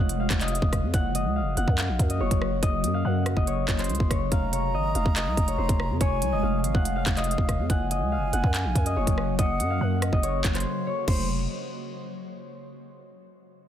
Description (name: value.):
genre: hip hop, drill.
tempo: 142 BPM.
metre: 4/4.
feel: half-time.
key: F phrygian.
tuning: A4 = 439 Hz.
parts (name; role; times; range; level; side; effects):
concert harp; melody; 0.0-11.3 s; C5 to Gb5; -30 LUFS; left 3 dB; low-pass filter.
ethereal airy pad; sustained chords; 0.0-11.3 s; C3 to Gb4; -32 LUFS; equal; ensemble chorus, built-in reverb.
growling 808-style bass; bass; 0.0-11.5 s; F1 to Gb2; -28 LUFS; equal; none.
downlifter; sound effects; 0.1-0.9 s; none; barely audible; none; none.
drill drum kit; drums; 0.1-11.2 s; crash cymbal, handclaps, hi-hat, kick drum, rim click; -25 LUFS; equal; none.
breathy mellow concert flute; second line; 4.3-11.3 s; C5 to Bb5; -35 LUFS; right 6 dB; ping-pong delay.
room: digital ambience.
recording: dense, heavily limited modern master.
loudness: -23 LUFS.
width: side -10 dB against mid.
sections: 0.0-11.1 A section; 11.1-12.8 B section.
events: break 10.7-11.1.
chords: 0.0 Fm; 0.9 Gb; 4.3 Fm; 7.7 Gb; 11.1 Fm.